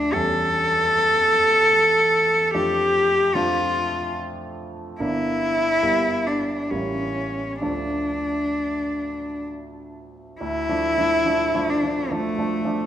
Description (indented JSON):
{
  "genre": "classical, romantic duo for cello and grand piano",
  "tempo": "63-76 BPM",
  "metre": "3/4",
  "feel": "rubato",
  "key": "D minor",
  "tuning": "A4 = 440 Hz",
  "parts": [
    { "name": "rich cello", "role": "melody", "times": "0.0-12.9 s", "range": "A3 to A4", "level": "-20 LUFS", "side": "left 1 dB", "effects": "none" },
    { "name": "warm grand piano", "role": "accompaniment", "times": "0.0-12.9 s", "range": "G1 to E4", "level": "-28 LUFS", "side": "right 2 dB", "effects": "none" }
  ],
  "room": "wet recital hall reverb, RT60 1.6 s",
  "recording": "none",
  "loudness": "-19 LUFS",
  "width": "side -10 dB against mid",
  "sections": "0.0-10.4 A section; 10.4-12.9 A section",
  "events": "none",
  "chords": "0.1 A7/E; 2.5 Dm/F; 5.0 Gm; 5.8 Edim/G; 6.7 A7b9; 7.6 Dm"
}